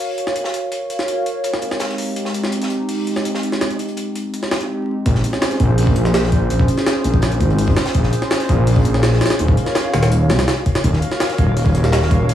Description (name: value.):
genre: drum and bass, jungle.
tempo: 166 BPM.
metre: 4/4.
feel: straight.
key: Bb minor.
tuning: A4 = 440 Hz.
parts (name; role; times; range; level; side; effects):
warbly tape-like pad; sustained chords; 0.0-12.3 s; Ab3 to F5; -22 LUFS; equal; chorus, built-in reverb.
compact cocktail drum kit; drums; 0.0-12.3 s; hi-hat, snare drum; -30 LUFS; equal; high-pass filter on hats, high-pass filter on snare, high-pass filter on room.
jungle sampler-style drum kit; drums; 0.0-12.3 s; hi-hat, kick drum, snare drum; -19 LUFS; equal; none.
detuned saw bass; bass; 5.1-12.3 s; Eb1 to C2; -16 LUFS; equal; none.
room: light reverb, small room ambience.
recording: vinyl crackle, studio reverb.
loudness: -15 LUFS.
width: side -11 dB against mid.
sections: 0.0-5.1 A section; 5.1-12.3 B section.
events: drop 5.1-12.3.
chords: 0.0 Gbmaj7; 1.4 Abmaj7; 5.1 Bbm7; 9.4 Ebm7.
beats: 0.00 0.36 | 0.72 1.08 1.44 1.81 | 2.17 2.53 2.89 3.25 | 3.61 3.98 4.34 4.70 | 5.06 5.42 5.78 6.14 | 6.50 6.87 7.23 7.59 | 7.95 8.31 8.67 9.04 | 9.40 9.76 10.12 10.48 | 10.84 11.20 11.56 11.93 | 12.29.